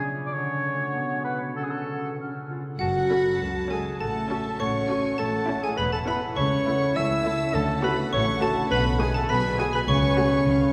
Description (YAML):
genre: cinematic, playful, whimsical film cue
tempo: 101 BPM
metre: 2/4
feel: straight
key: F# minor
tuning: A4 = 440 Hz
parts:
  - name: clear clarinet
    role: second line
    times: 0.0-10.7 s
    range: B3 to E5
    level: -30 LUFS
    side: equal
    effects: none
  - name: mellow large flute ensemble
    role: second line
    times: 0.0-2.5 s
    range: F#5 to E#6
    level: -40 LUFS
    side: equal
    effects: none
  - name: concert harp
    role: arpeggios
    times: 0.0-10.7 s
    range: F#2 to A5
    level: -35 LUFS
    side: equal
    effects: none
  - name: warm oboe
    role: second line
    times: 0.3-2.2 s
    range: G#4 to D5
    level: -34 LUFS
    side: equal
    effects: none
  - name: warm chamber violin section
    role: melody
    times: 2.8-10.7 s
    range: E5 to B5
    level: -41 LUFS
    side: equal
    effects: none
  - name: xylophone with wooden mallets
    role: melody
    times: 2.8-10.7 s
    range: F#5 to E6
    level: -33 LUFS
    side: equal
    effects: none
  - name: rich chamber violin section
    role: second line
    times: 2.8-10.7 s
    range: F#5 to E6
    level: -37 LUFS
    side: equal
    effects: none
  - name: mellow French horn section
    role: sustained chords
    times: 2.8-10.7 s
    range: F#3 to E4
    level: -32 LUFS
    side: equal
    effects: none
  - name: rich chamber cello section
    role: bass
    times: 2.8-10.7 s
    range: C#2 to D3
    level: -35 LUFS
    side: equal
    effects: none
  - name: rich chamber double bass section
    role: bass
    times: 2.8-10.7 s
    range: E1 to D2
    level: -34 LUFS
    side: equal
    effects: none
  - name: rich chamber viola section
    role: accompaniment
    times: 3.1-10.4 s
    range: G#3 to A4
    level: -36 LUFS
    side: equal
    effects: none
room: wet cathedral reverb, RT60 4.7 s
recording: recorded in a church or concert hall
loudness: -25 LUFS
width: mono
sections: 0.0-2.8 A section; 2.8-10.7 B section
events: none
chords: 0.3 Dmaj7; 0.9 G#m7b5/B; 1.6 F#m/C#; 2.2 C#; 2.8 F#m; 4.0 F#m/A; 5.2 A; 6.4 A/C#; 7.5 Dmaj7; 8.7 G#m7b5/B; 9.9 F#m/C#